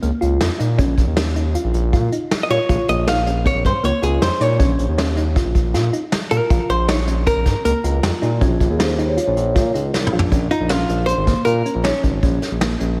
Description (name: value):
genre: progressive instrumental, band music in an uneven meter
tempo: 157 BPM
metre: 5/4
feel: straight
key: Bb minor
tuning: A4 = 440 Hz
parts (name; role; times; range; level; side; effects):
- thumb-piano-like synth pluck; arpeggios; 0.0-13.0 s; Bb3 to F4; -26 LUFS; equal; chorus, slapback echo
- smooth synth bass; bass; 0.0-13.0 s; Ab1 to Bb2; -22 LUFS; equal; none
- vintage brush drum kit; drums; 0.0-12.9 s; hi-hat, kick drum, snare drum, toms; -23 LUFS; equal; none
- archtop guitar, miked and amplified; melody; 2.4-12.0 s; Db4 to F5; -23 LUFS; equal; slapback echo, digital delay
- vibraphone with soft mallets; second line; 8.0-9.8 s; F4 to Db5; -25 LUFS; equal; slapback echo
room: moderate scoring stage reverb, RT60 2.1 s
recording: big arena sound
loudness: -18 LUFS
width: mono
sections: 0.0-10.3 A section; 10.3-13.0 B section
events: drum fill 9.9-10.3; hollow-body jazz guitar solo 10.3-13.0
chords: 0.0 Bbm; 10.3 Bbm7